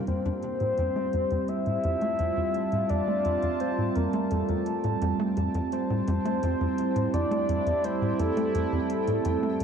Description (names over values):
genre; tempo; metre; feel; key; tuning
ambient, sequencer-driven space music; 85 BPM; 4/4; straight; F major; A4 = 439 Hz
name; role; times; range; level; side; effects
sweeping resonant pad; sustained chords; 0.0-9.6 s; G3 to A5; -29 LUFS; right 3 dB; chorus
pulsing gated texture; texture; 0.0-9.6 s; G5; -51 LUFS; right 2 dB; none
soft octave-layered synth lead; melody; 0.1-9.6 s; A4 to E5; -29 LUFS; left 2 dB; chorus, ping-pong delay
tight sequencer bass; riff; 0.1-9.6 s; F2 to A3; -30 LUFS; equal; lush chorus, ping-pong delay
electronic hi-hat and bongos; percussion; 0.1-9.6 s; none; -51 LUFS; right 2 dB; ping-pong delay
room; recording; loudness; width
wet cathedral reverb, RT60 6.9 s; dreamy mix soaked in reverb; -24 LUFS; side -7 dB against mid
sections
0.1-9.6 A section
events
fade-in on drum 0.1-9.6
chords
0.1 F